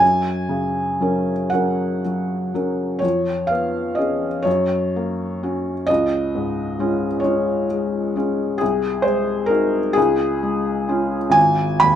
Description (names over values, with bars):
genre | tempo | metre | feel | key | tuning
classical, romantic nocturne for solo piano | 39-45 BPM (dotted quarters) | 12/8 | rubato | F# major | A4 = 436 Hz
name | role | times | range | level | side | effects
felt-muted upright piano | solo | 0.0-12.0 s | G#1 to B5 | -18 LUFS | equal | none
room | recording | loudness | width
moderate large studio reverb, RT60 1.1 s | minimal, uncompressed stereo recording | -18 LUFS | side -10 dB against mid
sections
0.0-12.0 A section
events
none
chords
0.0 F#; 3.0 C#7/E#; 4.5 F#; 5.9 C#; 8.6 G#7/B#; 10.0 C#; 11.4 G#m